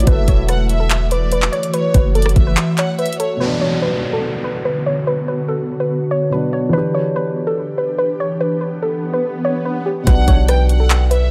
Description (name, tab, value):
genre	hip hop, trap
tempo	144 BPM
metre	4/4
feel	half-time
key	B minor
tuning	A4 = 443 Hz
part	soft round pluck	melody	0.0-11.3 s	G4 to C#5	-23 LUFS	equal	chorus, digital delay
part	warm studio violin section	second line	0.0-3.4, 10.1-11.3 s	C#5 to G5	-27 LUFS	equal	digital delay
part	dark grand piano	accompaniment	0.0-11.3 s	B2 to A4	-27 LUFS	equal	none
part	ethereal airy pad	sustained chords	0.0-10.0 s	D3 to G4	-26 LUFS	equal	ensemble chorus, built-in reverb
part	warm 808-style bass	bass	0.0-2.6, 10.1-11.3 s	E1 to B1	-17 LUFS	equal	none
part	trap drum kit	drums	0.0-3.3, 10.1-11.2 s	handclaps, hi-hat, kick drum, rim click	-18 LUFS	equal	none
part	downlifter and swell	sound effects	3.4-10.1 s	none	-29 LUFS	equal	none
room	little or no reverb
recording	none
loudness	-17 LUFS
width	mono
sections	0.0-3.4 A section; 3.4-10.1 B section; 10.1-11.3 A section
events	break 2.6-3.4; swell 8.7-10.1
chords	0.1 F#m7; 3.4 Bm; 6.7 Em7; 10.1 Bm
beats	| 0.07 0.49 0.90 1.32 | 1.74 2.15 2.57 2.99 | 3.40 3.82 4.24 4.65 | 5.07 5.49 5.90 6.32 | 6.74 7.15 7.57 7.99 | 8.40 8.82 9.24 9.65 | 10.07 10.49 10.90